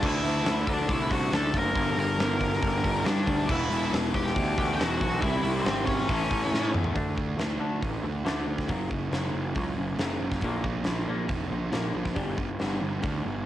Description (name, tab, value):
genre	quiet-loud alternative rock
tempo	138 BPM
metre	4/4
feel	straight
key	D mixolydian, D major from 7.0 s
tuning	A4 = 439 Hz
part	octave-fuzz lead guitar	melody	0.0-6.7 s	C4 to Bb5	-30 LUFS	equal	distortion, cassette tape
part	cranked stack guitar	riff	0.0-6.9 s	E2 to D4	-32 LUFS	left 8 dB	overdrive, cassette tape
part	thick fuzz guitar	riff	0.0-13.5 s	E2 to D4	-35 LUFS	right 8 dB	distortion, cassette tape
part	fuzz picked electric bass	bass	0.0-13.5 s	E1 to A2	-30 LUFS	equal	overdrive
part	huge arena drum kit	drums	0.0-13.1 s	crash cymbal, hi-hat, kick drum, snare drum, toms	-30 LUFS	equal	cassette tape
part	twangy electric guitar	arpeggios	7.0-13.4 s	F#2 to D4	-37 LUFS	left 3 dB	wide subtle chorus, cassette tape
room	light reverb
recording	home recording on cassette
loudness	-25 LUFS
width	side -13 dB against mid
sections	0.0-7.0 A section; 7.0-13.5 B section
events	drum fill 6.5-7.0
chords	0.0 D; 1.8 Gm; 3.5 Em; 5.2 C; 6.1 A; 7.0 D5; 8.7 F#5; 10.4 Bb; 12.2 G5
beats	| 0.02 0.46 0.89 1.32 | 1.76 2.19 2.63 3.06 | 3.49 3.93 4.36 4.79 | 5.22 5.66 6.09 6.53 | 6.96 7.39 7.83 8.26 | 8.70 9.13 9.56 10.00 | 10.43 10.87 11.30 11.74 | 12.17 12.60 13.04